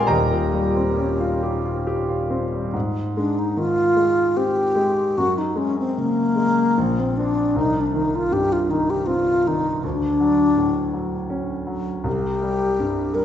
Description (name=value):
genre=classical, impressionist duo for alto flute and grand piano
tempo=64-84 BPM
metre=3/4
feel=rubato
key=unclear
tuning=A4 = 440 Hz
part: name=wooden-headed alto flute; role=melody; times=0.0-13.2 s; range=Bb3 to Bb4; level=-20 LUFS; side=left 2 dB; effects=none
part: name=clear grand piano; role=accompaniment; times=0.0-13.2 s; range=Eb1 to Bb5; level=-23 LUFS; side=equal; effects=none
room=wet scoring stage reverb, RT60 1.6 s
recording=recorded in a church or concert hall, nothing above 8.0 kHz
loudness=-19 LUFS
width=side -10 dB against mid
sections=0.0-2.7 A section; 2.7-13.2 B section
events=none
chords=0.1 Eb13; 2.7 Ab6; 5.2 Gbadd9; 6.8 Bbadd9; 7.6 Cm; 9.8 Dmaj7; 12.1 C5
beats=| 0.06 0.98 1.87 | 2.74 3.57 4.36 | 5.15 5.95 6.76 | 7.56 8.31 9.08 | 9.84 10.57 11.30 | 12.06 12.81